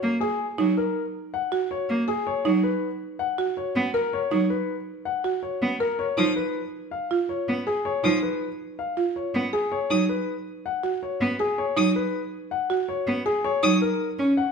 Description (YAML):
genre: classical, minimalist pattern music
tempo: 161 BPM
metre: 5/4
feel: straight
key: F# major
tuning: A4 = 440 Hz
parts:
  - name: warm concert grand piano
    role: melody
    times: 0.0-14.5 s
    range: G#4 to F#5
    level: -28 LUFS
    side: left 7 dB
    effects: none
  - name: clear cello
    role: accompaniment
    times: 0.0-14.3 s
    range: E#3 to C#4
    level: -26 LUFS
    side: right 1 dB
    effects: none
  - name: buzzing marimba with medium mallets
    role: arpeggios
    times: 0.2-13.9 s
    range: D#4 to A#4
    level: -27 LUFS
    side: right 6 dB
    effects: none
  - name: rich violin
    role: arpeggios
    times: 6.2-13.8 s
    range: D#6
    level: -28 LUFS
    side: left 4 dB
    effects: none
room: wet recital hall reverb, RT60 1.4 s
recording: none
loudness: -23 LUFS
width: side -5 dB against mid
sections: 0.0-14.5 A section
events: none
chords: 0.0 F#add9; 2.3 Bmaj7; 6.0 C#7; 9.7 G#m7; 13.4 F#